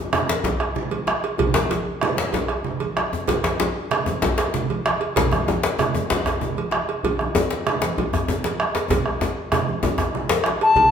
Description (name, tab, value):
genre	west african traditional, West African drum ensemble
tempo	128 BPM (dotted quarters)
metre	12/8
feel	straight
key	unclear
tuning	A4 = 440 Hz
part	bombo	percussion	0.1-10.9 s	none	-25 LUFS	right 2 dB	none
part	congas	percussion	0.1-10.9 s	none	-28 LUFS	right 4 dB	none
part	cowbell	percussion	0.1-10.9 s	none	-28 LUFS	right 5 dB	none
part	djembe	percussion	0.1-10.4 s	none	-24 LUFS	left 4 dB	none
part	djembe	percussion	0.3-10.9 s	none	-30 LUFS	left 4 dB	none
part	bright bansuri	melody	10.6-10.9 s	A5	-12 LUFS	left 3 dB	none
room	wet large studio reverb, RT60 1.4 s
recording	band playing live in one room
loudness	-20 LUFS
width	side -8 dB against mid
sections	0.0-10.8 A section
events	drum fill 8.9-10.8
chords	none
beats	0.45 0.92 | 1.39 1.87 2.34 2.81 | 3.28 3.75 4.22 4.69 | 5.16 5.63 6.10 6.57 | 7.04 7.50 7.97 8.44 | 8.90 9.37 9.83 10.29 | 10.76